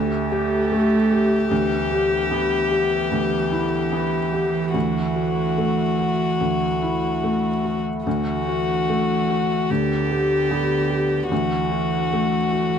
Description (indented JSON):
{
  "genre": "neoclassical piano and strings",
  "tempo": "74 BPM",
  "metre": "4/4",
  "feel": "rubato",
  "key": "D major",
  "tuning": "A4 = 438 Hz",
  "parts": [
    { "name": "warm violin", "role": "melody", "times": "0.0-12.8 s", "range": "F#4 to G4", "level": "-24 LUFS", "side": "left 5 dB", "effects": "none" },
    { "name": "rich cello", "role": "second line", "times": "0.0-12.8 s", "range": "D3 to A3", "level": "-25 LUFS", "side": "right 6 dB", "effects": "none" },
    { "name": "felt-muted upright piano", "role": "accompaniment", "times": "0.0-12.8 s", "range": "D2 to G4", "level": "-23 LUFS", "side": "left 1 dB", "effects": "none" },
    { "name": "pedal harmonium", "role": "sustained chords", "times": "0.0-12.8 s", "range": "A3 to E5", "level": "-32 LUFS", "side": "right 2 dB", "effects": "none" }
  ],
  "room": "moderate studio reverb, RT60 0.6 s",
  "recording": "dark, warm production",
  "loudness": "-19 LUFS",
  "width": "side -8 dB against mid",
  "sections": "0.0-12.8 A section",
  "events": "none",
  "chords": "0.0 A7sus4/D; 1.5 Em7/D; 4.7 Dadd9; 9.7 G/D; 11.3 Dadd9",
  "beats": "0.71 | 1.51 2.31 3.11 3.93 | 4.75 5.58 6.41 7.23 | 8.06 8.88 9.69 10.50 | 11.31 12.11"
}